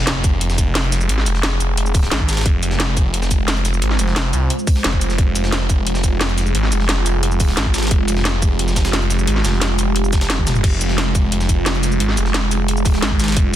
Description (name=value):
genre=dark technical drum and bass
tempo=176 BPM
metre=4/4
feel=straight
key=F minor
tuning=A4 = 440 Hz
part: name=deep dark ambient pad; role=sustained chords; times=0.8-13.6 s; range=Ab3 to C5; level=-24 LUFS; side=right 1 dB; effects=chorus, built-in reverb, sidechain pumping
part: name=snarling distorted saw bass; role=bass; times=0.0-13.6 s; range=F1 to C2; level=-19 LUFS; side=equal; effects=distortion, overdrive
part: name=impact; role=sound effects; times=0.0-1.1 s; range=none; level=-30 LUFS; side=equal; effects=none
part: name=breakbeat sampler-style drum kit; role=drums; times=0.1-13.6 s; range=hi-hat, snare drum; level=-28 LUFS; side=equal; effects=none
part: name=drum and bass drum kit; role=drums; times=0.1-13.6 s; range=cabasa, crash cymbal, hi-hat, snare drum, toms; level=-22 LUFS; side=equal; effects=none
part: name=electronic kick drum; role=drums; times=0.2-13.4 s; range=none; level=-17 LUFS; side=equal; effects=none
room=little or no reverb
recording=dense, heavily limited modern master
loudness=-15 LUFS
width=side -12 dB against mid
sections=0.0-13.6 A section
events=impact 0.0-1.1; drum fill 10.4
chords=0.0 Fmadd9